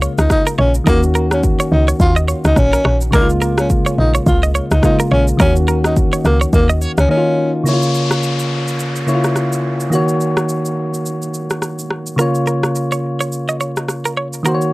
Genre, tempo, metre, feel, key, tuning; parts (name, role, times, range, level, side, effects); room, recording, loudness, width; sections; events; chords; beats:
afrobeats; 106 BPM; 4/4; swing 58% on 16ths; Db major; A4 = 443 Hz
soft electric-piano-like synth keys; accompaniment; 0.0-14.7 s; Db3 to Db5; -17 LUFS; equal; chorus
direct-recorded clean electric guitar; riff; 0.0-6.9, 12.2-14.6 s; Bb4 to Eb5; -21 LUFS; right 3 dB
woody log drum bass; bass; 0.0-7.1 s; Bb1 to Eb2; -15 LUFS; equal
afro-pop drum kit; drums; 0.0-14.7 s; kick drum, rim click, shaker; -18 LUFS; equal
breathy tenor saxophone; melody; 0.2-7.5 s; Bb3 to F4; -18 LUFS; equal
downlifter and swell; sound effects; 7.7-14.7 s; -27 LUFS; left 1 dB
little or no reverb; dry, gritty hardware recording, transformer saturation, cassette tape; -13 LUFS; side -20 dB against mid
0.0-7.7 A section; 7.7-14.7 B section
drums muted 7.1-7.7
0.0 Db6; 0.9 Ebm7; 3.1 Db6; 5.4 Ebm7; 7.7 Db6; 9.9 Ebm7; 12.2 Db6
0.30 | 0.87 1.44 2.00 2.57 | 3.13 3.70 4.27 4.83 | 5.40 5.96 6.53 7.10 | 7.66 8.23 8.79 9.36 | 9.93 10.49 11.06 11.62 | 12.19 12.76 13.32 13.89 | 14.45